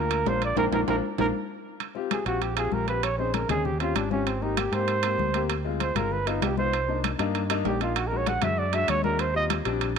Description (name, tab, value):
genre	Afro-Cuban jazz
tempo	195 BPM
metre	4/4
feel	straight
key	unclear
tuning	A4 = 437 Hz
part	dark trumpet	melody	0.0-9.5 s	C4 to F#5	-28 LUFS	right 4 dB	none
part	warm grand piano	accompaniment	0.0-10.0 s	G3 to Ab4	-31 LUFS	left 10 dB	none
part	fingered electric bass	bass	0.0-10.0 s	G1 to Ab2	-30 LUFS	right 1 dB	none
part	congas	percussion	0.1-10.0 s	none	-33 LUFS	left 11 dB	none
part	timbales	percussion	0.1-10.0 s	none	-32 LUFS	right 15 dB	none
room	moderate echo chamber reverb, RT60 2.3 s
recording	1960s-style stereo with parts hard left and right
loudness	-24 LUFS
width	side -6 dB against mid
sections	0.0-1.8 A section; 1.8-10.0 B section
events	band accent 0.6-1.8; drum fill 0.9-1.8; trumpet solo 1.8-10.0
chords	0.0 Gm7 (rootless); 1.8 Abmaj13; 3.0 Bbm11; 3.7 Eb13; 4.3 Abmaj9; 5.5 Dm7b5; 6.1 Gaug7; 6.7 Cm9; 8.0 Bbaug7; 9.2 Eb69